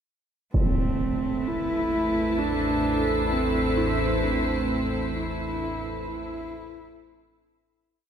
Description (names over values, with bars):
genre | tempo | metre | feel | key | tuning
dark ambient drone | 65 BPM | 4/4 | straight | A minor | A4 = 439 Hz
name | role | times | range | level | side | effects
dark horsehead fiddle | melody | 0.5-7.4 s | C4 to E4 | -27 LUFS | right 1 dB | diffuse ambient delay
clear symphonic cello section | sustained chords | 0.5-7.9 s | A3 to C5 | -31 LUFS | equal | none
deep rumbling drone | drone | 1.5-8.0 s | A1 to E2 | -31 LUFS | equal | built-in reverb
impact | percussion | 0.5-0.7 s | none | -28 LUFS | equal | low-pass filter on sfx
icy glass pad | texture | 1.4-7.9 s | A4 | -32 LUFS | equal | chorus, built-in reverb
dark detuned synth bell | arpeggios | 3.8-8.1 s | D4 to E4 | -34 LUFS | right 1 dB | chorus, phaser, diffuse ambient delay
room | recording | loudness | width
wet huge ambient reverb, RT60 7.9 s | none | -23 LUFS | side -8 dB against mid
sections
0.5-7.9 A section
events
fade-out on cello section 0.5-7.9; fade-out 4.2-7.9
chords
0.5 Am